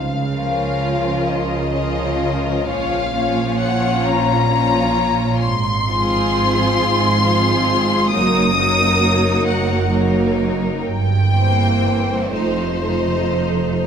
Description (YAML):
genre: classical, slow romantic movement for string orchestra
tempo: 44 BPM (dotted quarters)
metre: 6/8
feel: uneven beats, rubato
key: Bb minor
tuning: A4 = 440 Hz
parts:
  - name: warm symphonic violin section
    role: melody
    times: 0.0-13.9 s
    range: C5 to Eb6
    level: -20 LUFS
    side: left 4 dB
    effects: none
  - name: warm chamber cello section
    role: bass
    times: 0.0-13.7 s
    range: F2 to Db3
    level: -22 LUFS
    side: right 3 dB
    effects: none
  - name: warm symphonic double bass section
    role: bass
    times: 0.0-13.7 s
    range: F1 to Db2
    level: -24 LUFS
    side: right 3 dB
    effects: none
  - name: rich studio violin section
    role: second line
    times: 0.3-13.9 s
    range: C4 to Db5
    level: -24 LUFS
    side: left 2 dB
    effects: none
  - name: warm symphonic viola section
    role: accompaniment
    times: 0.3-13.9 s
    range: E3 to Db4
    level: -21 LUFS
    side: right 1 dB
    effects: none
room: moderate scoring stage reverb, RT60 2.0 s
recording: minimal, uncompressed stereo recording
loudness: -15 LUFS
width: side -7 dB against mid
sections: 0.0-13.9 A section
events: none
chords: 0.0 Bbm/Db; 2.7 Bbm; 5.4 Fm/Ab; 8.1 Ebm/Gb; 10.9 C7/G; 12.3 F7